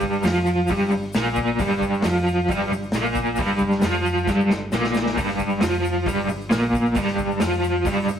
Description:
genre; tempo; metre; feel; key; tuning
garage rock duo or trio; 134 BPM; 4/4; straight; unclear; A4 = 445 Hz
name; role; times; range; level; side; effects
crunchy overdriven guitar; riff; 0.0-8.2 s; G2 to F4; -20 LUFS; equal; tremolo
hollow-body short-scale picked electric bass; bass; 0.0-8.2 s; G1 to F2; -30 LUFS; equal; overdrive
vintage drum kit; drums; 0.0-8.0 s; hi-hat, kick drum, snare drum; -28 LUFS; equal; none
tube shaker; percussion; 0.0-8.2 s; none; -45 LUFS; left 5 dB; none
room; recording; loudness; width
moderate stone room reverb, RT60 1.2 s; rough rehearsal-room recording; -19 LUFS; side -8 dB against mid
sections
0.0-8.2 A section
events
drum fill 4.3-5.2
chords
0.0 Gm7

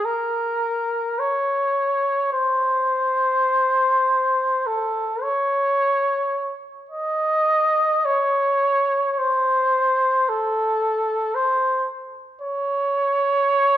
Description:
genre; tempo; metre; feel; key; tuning
classical, free, expressive piece for unaccompanied trumpet; free time; none; none; unclear; A4 = 440 Hz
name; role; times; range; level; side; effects
mellow trumpet; solo; 0.0-13.8 s; A4 to Eb5; -19 LUFS; equal; none
room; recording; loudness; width
moderate recital hall reverb, RT60 1.8 s; none; -18 LUFS; side -12 dB against mid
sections
0.0-13.8 A section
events
none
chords
none

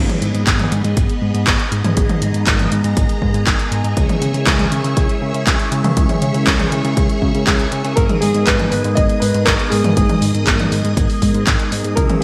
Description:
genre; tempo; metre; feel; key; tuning
italo disco; 120 BPM; 4/4; straight; G# minor; A4 = 435 Hz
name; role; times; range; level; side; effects
phased string machine; sustained chords; 0.0-12.2 s; B3 to E6; -27 LUFS; equal; ensemble chorus, phaser
mellow synth brass; stabs; 0.0-12.2 s; G#3 to A#4; -26 LUFS; equal; chorus
fat analog bass; bass; 0.0-12.1 s; G#1 to C#3; -22 LUFS; equal; none
house drum kit; drums; 0.1-12.2 s; handclaps, hi-hat, toms; -22 LUFS; equal; gated reverb
electronic kick drum; drums; 0.5-12.1 s; none; -20 LUFS; equal; none
clear concert grand piano; melody; 8.0-12.2 s; G#4 to D#5; -23 LUFS; equal; delay
room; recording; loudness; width
moderate lush hall reverb, RT60 2.6 s; bright 1980s-style digital production, vinyl crackle; -16 LUFS; mono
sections
0.0-12.2 A section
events
filter sweep on analog polysynth 0.0-12.2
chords
0.0 G#m; 4.0 C#m; 8.0 G#m

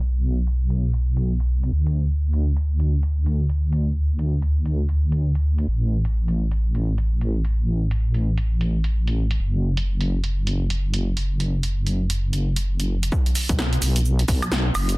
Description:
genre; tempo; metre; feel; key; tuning
UK garage, two-step garage; 129 BPM; 4/4; swing 60% on 16ths; B minor; A4 = 440 Hz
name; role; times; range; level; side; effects
deep soft wobble bass; bass; 0.0-15.0 s; F#1 to D2; -20 LUFS; equal; chorus
punchy analog drum machine; drums; 0.0-15.0 s; finger snaps, hi-hat, shaker, snare drum, woodblock; -29 LUFS; right 1 dB; overdrive, low-pass filter on hats, low-pass filter on snare, low-pass filter on perc, low-pass filter on room
electronic kick drum; drums; 13.1-14.4 s; none; -23 LUFS; equal; overdrive
room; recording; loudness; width
little or no reverb; dense, heavily limited modern master, low-pass filter; -20 LUFS; side -24 dB against mid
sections
0.0-13.1 A section; 13.1-15.0 B section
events
filter sweep on drum 0.0-13.1; filter sweep 0.0-13.1; drop 13.1-15.0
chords
none

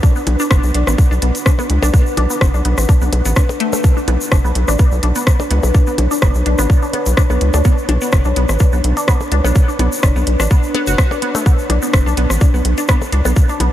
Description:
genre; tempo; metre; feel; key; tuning
minimal techno; 126 BPM; 4/4; swing 54% on 16ths; B minor; A4 = 440 Hz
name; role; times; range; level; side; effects
resonant blip pluck; riff; 0.0-13.7 s; A3 to F#4; -22 LUFS; equal; phaser, lush chorus, sidechain pumping, diffuse ambient delay
electronic kick drum; drums; 0.0-13.5 s; none; -12 LUFS; equal; none
egg shaker; percussion; 0.0-13.6 s; none; -28 LUFS; left 3 dB; none
deep dark ambient pad; texture; 0.0-13.7 s; D4 to F#5; -23 LUFS; left 1 dB; chorus, built-in reverb, sidechain pumping
rubbery square bass; bass; 0.3-13.7 s; F#1 to D2; -15 LUFS; equal; sidechain pumping
booming analog drum machine; drums; 0.3-13.7 s; hi-hat, rim click; -23 LUFS; equal; overdrive
percussion blips; percussion; 0.3-13.7 s; none; -28 LUFS; left 4 dB; none
room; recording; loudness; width
light reverb; none; -12 LUFS; side -12 dB against mid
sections
0.0-13.7 A section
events
none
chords
0.0 Bm

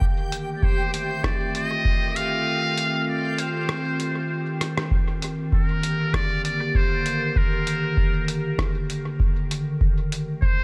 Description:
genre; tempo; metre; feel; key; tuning
ambient dub; 98 BPM; 4/4; swing 53% on 16ths; unclear; A4 = 440 Hz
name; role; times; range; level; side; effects
warbly tape-like pad; sustained chords; 0.0-10.6 s; D3 to Bb4; -30 LUFS; equal; chorus, built-in reverb
electronic kick drum; drums; 0.0-10.6 s; none; -25 LUFS; equal; studio reverb
backwards swelling texture; texture; 0.0-4.9 s; G4 to G5; -39 LUFS; equal; built-in reverb
lo-fi sampler-style drum kit; drums; 0.3-10.3 s; hi-hat, rim click; -33 LUFS; equal; studio reverb, dub echo
trumpet with metal mute; melody; 0.6-10.6 s; Bb4 to F5; -30 LUFS; equal; dub echo
room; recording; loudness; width
light reverb, digital ambience; none; -24 LUFS; mono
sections
0.0-4.9 A section; 4.9-10.6 A section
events
kick drops out 2.5-4.9; drum fill 4.6-4.9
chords
0.0 F7; 4.9 Ebmaj7; 9.8 F7

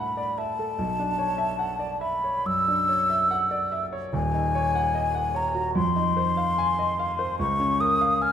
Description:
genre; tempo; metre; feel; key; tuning
classical, impressionist duo for flute and grand piano; 74 BPM; 4/4; rubato; unclear; A4 = 440 Hz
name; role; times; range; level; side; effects
mellow hollow concert flute; melody; 0.0-8.3 s; Ab5 to F6; -24 LUFS; left 2 dB; none
warm grand piano; accompaniment; 0.0-8.3 s; Eb1 to Ab5; -27 LUFS; right 2 dB; none
room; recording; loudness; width
wet recital hall reverb, RT60 1.6 s; none; -22 LUFS; side -9 dB against mid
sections
0.0-8.3 A section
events
none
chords
0.0 Dadd9; 0.8 Bm11; 4.1 Ebm7; 5.8 Fm7; 7.4 Db6

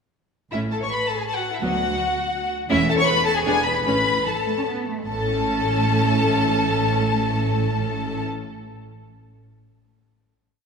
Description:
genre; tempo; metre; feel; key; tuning
quick classical-period movement for string orchestra; 143-168 BPM; 3/4; rubato; A major; A4 = 440 Hz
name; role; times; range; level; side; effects
warm symphonic violin section; melody; 0.5-8.2 s; E5 to C#6; -24 LUFS; left 3 dB; none
warm symphonic violin section; second line; 0.5-8.2 s; E4 to C#5; -26 LUFS; left 3 dB; none
rich studio viola section; accompaniment; 0.5-8.2 s; F#3 to D4; -26 LUFS; equal; none
warm symphonic cello section; bass; 0.5-8.2 s; D2 to C#4; -29 LUFS; right 4 dB; none
warm symphonic double bass section; bass; 0.5-8.2 s; E1 to D2; -28 LUFS; right 4 dB; none
room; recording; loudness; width
wet concert hall reverb, RT60 2.4 s; minimal, uncompressed stereo recording; -19 LUFS; side -5 dB against mid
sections
0.5-5.1 A section; 5.1-7.5 final chord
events
slowing down 2.2-5.1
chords
0.5 A; 1.6 Bm/D; 2.7 A/E; 3.5 E7; 3.9 A

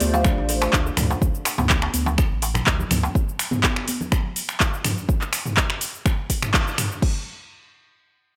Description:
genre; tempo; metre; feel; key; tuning
afro house; 124 BPM; 4/4; straight; unclear; A4 = 439 Hz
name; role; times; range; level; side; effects
dark analog pad; sustained chords; 0.0-1.2 s; A3 to D5; -30 LUFS; equal; chorus, sidechain pumping
kalimba; arpeggios; 0.0-1.1 s; D4 to F5; -32 LUFS; equal; sidechain pumping, delay
warm sub bass; bass; 0.0-3.1 s; A1 to D2; -28 LUFS; equal; sidechain pumping
deep house drum kit; drums; 0.0-7.1 s; crash cymbal, finger snaps, handclaps, hi-hat, shaker, toms; -26 LUFS; equal; overdrive
congas; percussion; 0.0-4.9 s; none; -32 LUFS; equal; none
darbuka; percussion; 0.1-3.1 s; none; -31 LUFS; equal; none
electronic kick drum; drums; 0.3-7.1 s; none; -24 LUFS; equal; overdrive
room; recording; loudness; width
light reverb; none; -22 LUFS; mono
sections
0.0-7.0 A section; 7.0-8.4 B section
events
drop 0.0-7.0; band accent 6.5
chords
0.0 Dm7; 7.0 N.C.

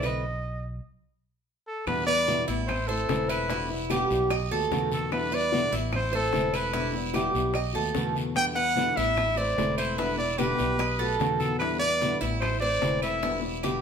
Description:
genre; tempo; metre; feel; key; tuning
latin, Cuban son and guajira; 148 BPM; 4/4; straight; E minor; A4 = 436 Hz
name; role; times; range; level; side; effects
clear trumpet; melody; 0.0-13.4 s; A4 to G5; -27 LUFS; equal; none
nylon-string guitar; accompaniment; 0.0-13.8 s; B2 to F#4; -32 LUFS; left 4 dB; none
Cuban tres; arpeggios; 0.0-13.8 s; E4 to D#5; -30 LUFS; right 4 dB; none
mellow fretless electric bass; bass; 0.0-13.8 s; E1 to E2; -33 LUFS; equal; none
bongos; percussion; 0.0-13.8 s; none; -36 LUFS; left 6 dB; none
claves; percussion; 0.0-13.8 s; none; -39 LUFS; right 3 dB; none
congas; percussion; 0.0-13.8 s; none; -36 LUFS; equal; none
guiro; percussion; 0.0-13.8 s; none; -41 LUFS; left 3 dB; none
room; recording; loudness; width
moderate studio reverb, RT60 0.8 s; band playing live in one room; -24 LUFS; side -7 dB against mid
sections
0.0-1.9 A section; 1.9-13.8 B section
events
stop 0.2-1.9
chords
0.2 B; 1.9 Em7; 2.7 Am; 3.5 Em7; 4.3 B7; 5.1 Em7; 5.9 Am; 6.7 Em7; 7.6 B7; 8.4 Em7; 9.2 Am; 10.0 Em7; 10.8 B7; 11.6 Em7; 12.4 Am; 13.2 Em7

